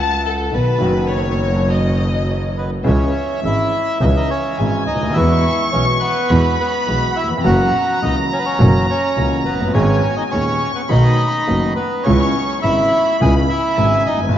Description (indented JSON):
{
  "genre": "tango",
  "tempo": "104 BPM",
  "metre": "4/4",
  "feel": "rubato",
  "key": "unclear",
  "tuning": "A4 = 439 Hz",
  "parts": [
    { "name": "rich chamber violin section", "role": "second line", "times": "0.0-14.4 s", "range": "A4 to C#6", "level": "-22 LUFS", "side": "left 1 dB", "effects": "none" },
    { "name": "warm grand piano", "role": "accompaniment", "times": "0.0-14.4 s", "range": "D#1 to G#4", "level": "-20 LUFS", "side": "equal", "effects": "none" },
    { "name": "warm double bass", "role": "bass", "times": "0.0-14.4 s", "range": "F#1 to E2", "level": "-18 LUFS", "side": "right 1 dB", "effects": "none" },
    { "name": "bandoneon", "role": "melody", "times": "2.6-14.4 s", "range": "B3 to G#5", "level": "-19 LUFS", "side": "equal", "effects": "none" }
  ],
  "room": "wet cathedral reverb, RT60 4.9 s",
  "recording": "in a vast, echoing space, nothing above 7.6 kHz",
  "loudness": "-14 LUFS",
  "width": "side -10 dB against mid",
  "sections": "0.0-2.9 A section; 2.9-14.4 A section",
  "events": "violin section solo 0.0-2.9",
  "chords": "0.0 F#madd9; 0.5 B; 2.9 C#m; 5.2 Eadd9; 7.5 F#7; 9.8 G#m; 10.9 B7; 12.1 C#m7"
}